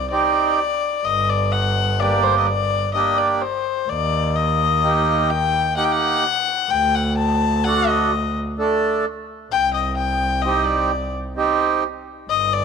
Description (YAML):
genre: klezmer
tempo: 64 BPM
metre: 3/4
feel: straight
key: unclear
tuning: A4 = 440 Hz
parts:
  - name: rich violin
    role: melody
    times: 0.0-12.6 s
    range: C5 to A5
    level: -20 LUFS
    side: left 8 dB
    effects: slapback echo
  - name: accordion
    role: accompaniment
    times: 0.1-11.8 s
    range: A3 to A4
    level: -21 LUFS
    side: right 6 dB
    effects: none
  - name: clear double bass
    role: bass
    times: 1.1-12.6 s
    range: G1 to Eb2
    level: -24 LUFS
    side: right 2 dB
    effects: none
room: moderate plate reverb, RT60 2.7 s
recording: none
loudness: -17 LUFS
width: side -6 dB against mid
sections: 0.0-12.6 A section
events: none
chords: 0.0 Cm; 1.1 Gm; 3.9 Eb; 6.7 D; 9.5 Cm